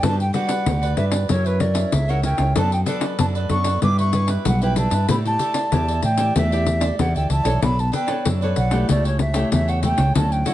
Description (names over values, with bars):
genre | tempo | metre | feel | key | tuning
samba and choro | 95 BPM | 4/4 | straight | unclear | A4 = 440 Hz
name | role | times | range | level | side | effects
bright wooden flute | melody | 0.0-10.5 s | B4 to D6 | -24 LUFS | equal | none
cavaquinho | accompaniment | 0.0-10.5 s | D4 to G5 | -30 LUFS | right 4 dB | none
nylon-string guitar | accompaniment | 0.0-10.5 s | C#3 to D5 | -26 LUFS | left 2 dB | none
fretless electric bass | bass | 0.0-10.4 s | B1 to A2 | -21 LUFS | right 1 dB | none
pandeiro | percussion | 0.0-10.5 s | none | -24 LUFS | left 4 dB | none
room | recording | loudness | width
moderate studio reverb, RT60 0.7 s | nothing above 11.0 kHz | -17 LUFS | side -13 dB against mid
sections
0.0-10.5 A section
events
none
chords
0.0 Gmaj7; 1.3 F#7; 2.6 Bm7/F#; 3.8 Em7/G; 5.1 A7sus4; 7.6 Bm9; 8.9 A7/C#